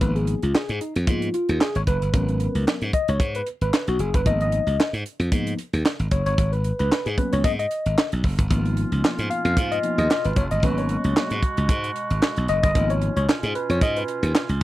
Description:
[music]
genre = early-eighties boogie funk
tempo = 113 BPM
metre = 4/4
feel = swing 56% on 16ths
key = unclear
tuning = A4 = 440 Hz
[part]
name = tine electric piano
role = accompaniment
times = 0.0-14.5 s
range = E#3 to E#5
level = -25 LUFS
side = left 2 dB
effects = analog chorus
[part]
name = glassy slap bass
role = bass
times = 0.0-14.6 s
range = F#1 to G#2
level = -23 LUFS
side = equal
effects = none
[part]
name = tight funk drum kit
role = drums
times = 0.0-14.6 s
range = handclaps, hi-hat, kick drum, snare drum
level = -22 LUFS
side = right 1 dB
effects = none
[part]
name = mellow woodwind section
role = sustained chords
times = 8.5-14.6 s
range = B2 to F#4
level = -30 LUFS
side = right 2 dB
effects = none
[sound]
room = little or no reverb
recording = dry, close 1970s-style studio recording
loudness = -20 LUFS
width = side -16 dB against mid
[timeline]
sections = 0.0-14.6 A section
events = tine electric piano solo 0.0-14.6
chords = 0.0 C#13/G# (rootless); 2.1 G#m11; 4.3 C#13/G#; 6.4 G#m11; 8.5 C#13/G#; 10.6 G#m11; 12.8 C#13/G#

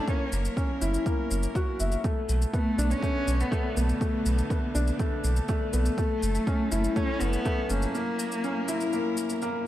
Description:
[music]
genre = piano and strings electronica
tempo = 122 BPM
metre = 4/4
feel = straight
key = B minor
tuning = A4 = 440 Hz
[part]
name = dark cello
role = melody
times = 0.0-9.4 s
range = A3 to D4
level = -32 LUFS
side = equal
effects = tape echo
[part]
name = rich string quartet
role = sustained chords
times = 0.0-9.7 s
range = B2 to C#5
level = -40 LUFS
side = left 1 dB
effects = sidechain pumping
[part]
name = felt-muted upright piano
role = riff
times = 0.0-9.7 s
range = A3 to E5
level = -30 LUFS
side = left 1 dB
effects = low-pass filter, tape echo
[part]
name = electronic kick drum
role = drums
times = 0.1-7.6 s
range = none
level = -29 LUFS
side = equal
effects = overdrive
[part]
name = shaker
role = drums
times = 0.1-9.5 s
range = none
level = -39 LUFS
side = left 2 dB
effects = overdrive
[part]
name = warm sub bass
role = bass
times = 0.3-7.9 s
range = F#1 to B1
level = -26 LUFS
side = equal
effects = sidechain pumping
[sound]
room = moderate plate reverb, RT60 1.2 s, studio reverb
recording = dreamy mix soaked in reverb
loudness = -25 LUFS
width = side -13 dB against mid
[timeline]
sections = 0.0-9.7 A section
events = fade-in on string quartet 0.0-9.7; break 7.9-9.7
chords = 0.1 F#7; 2.0 Bm7; 6.0 F#m7; 7.9 F#7

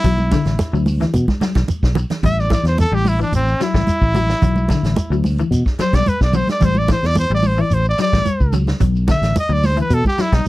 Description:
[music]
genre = afrobeat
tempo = 109 BPM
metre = 4/4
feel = straight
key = unclear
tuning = A4 = 439 Hz
[part]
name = bright trumpet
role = melody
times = 0.0-10.5 s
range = C4 to E5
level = -20 LUFS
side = equal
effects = none
[part]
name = electric guitar at the edge of break-up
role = arpeggios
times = 0.0-10.5 s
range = D3 to G3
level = -23 LUFS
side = left 6 dB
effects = ensemble chorus
[part]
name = fingered electric bass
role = bass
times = 0.0-10.5 s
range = A1 to B2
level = -18 LUFS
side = equal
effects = none
[part]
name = vintage drum kit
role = drums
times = 0.0-10.5 s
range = hi-hat, kick drum, snare drum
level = -20 LUFS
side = equal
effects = none
[part]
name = congas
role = percussion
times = 0.0-10.2 s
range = none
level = -22 LUFS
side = right 2 dB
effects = none
[part]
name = shekere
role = percussion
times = 0.0-10.5 s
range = none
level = -26 LUFS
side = equal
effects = none
[sound]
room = little or no reverb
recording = dry, close 1970s-style studio recording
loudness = -14 LUFS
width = side -17 dB against mid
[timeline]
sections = 0.0-10.5 A section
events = trumpet solo 0.0-10.5; drum fill 1.1-2.2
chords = 0.0 Bm; 2.2 A5; 4.4 Bm; 6.6 A7sus4; 8.8 Bm

